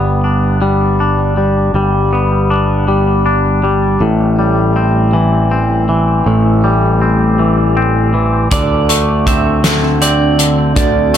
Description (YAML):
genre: post-rock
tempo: 53 BPM (dotted quarters)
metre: 6/8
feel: straight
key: A dorian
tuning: A4 = 440 Hz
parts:
  - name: twangy electric guitar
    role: arpeggios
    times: 0.0-11.2 s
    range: A2 to D4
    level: -14 LUFS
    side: left 2 dB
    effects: phaser, analog delay
  - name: growling fingered electric bass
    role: bass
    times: 0.0-11.2 s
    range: G1 to D2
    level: -14 LUFS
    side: right 1 dB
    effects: overdrive
  - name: dark analog pad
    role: sustained chords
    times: 9.8-11.2 s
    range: D3 to D5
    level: -19 LUFS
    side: right 2 dB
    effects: chorus
  - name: electric guitar at the edge of break-up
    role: arpeggios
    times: 8.5-11.2 s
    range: D5 to E5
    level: -17 LUFS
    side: right 10 dB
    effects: spring reverb, analog delay
  - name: loose indie drum kit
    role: drums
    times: 8.5-11.2 s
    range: hi-hat, kick drum, snare drum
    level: -15 LUFS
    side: equal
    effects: none
room: light reverb, small room ambience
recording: none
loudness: -10 LUFS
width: side -9 dB against mid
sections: 0.0-11.2 A section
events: none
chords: 0.0 G; 4.0 Am7; 8.5 D7